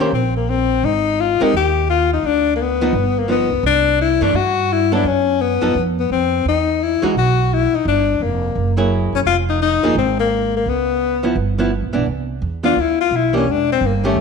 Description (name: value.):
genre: jazz.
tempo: 171 BPM.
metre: 4/4.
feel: swing 64% on 8ths.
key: unclear.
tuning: A4 = 439 Hz.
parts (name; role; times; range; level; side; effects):
warm tenor saxophone; melody; 0.0-14.2 s; A3 to G4; -17 LUFS; left 8 dB; slapback echo.
archtop guitar, miked and amplified; accompaniment; 0.0-14.2 s; Eb3 to C5; -21 LUFS; right 3 dB; none.
upright bass; bass; 0.1-14.2 s; E1 to G2; -21 LUFS; right 3 dB; none.
room: moderate echo chamber reverb, RT60 1.6 s, small room ambience.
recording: none.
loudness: -15 LUFS.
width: side -5 dB against mid.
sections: 0.8-12.1 A section; 12.1-14.2 B section.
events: tenor saxophone solo 12.1-14.2.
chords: 0.0 Eb6; 0.8 Abmaj7(no3); 2.2 Dm; 2.9 Gaug7; 3.6 C69; 5.0 Gbmadd11; 5.7 F5; 6.4 Emaj7sus2; 7.9 Gm7; 8.6 Gb9; 9.3 Fm7; 10.7 Dbm7; 11.4 G13; 12.1 Cmaj9; 13.5 C13/E.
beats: 0.12 0.48 | 0.83 1.18 1.53 1.88 | 2.23 2.58 2.94 3.29 | 3.64 3.99 4.34 4.69 | 5.04 5.39 5.75 6.10 | 6.45 6.80 7.15 7.50 | 7.85 8.20 8.55 8.91 | 9.26 9.61 9.96 10.31 | 10.66 11.01 11.36 11.71 | 12.06 12.41 12.77 13.12 | 13.47 13.82 14.17.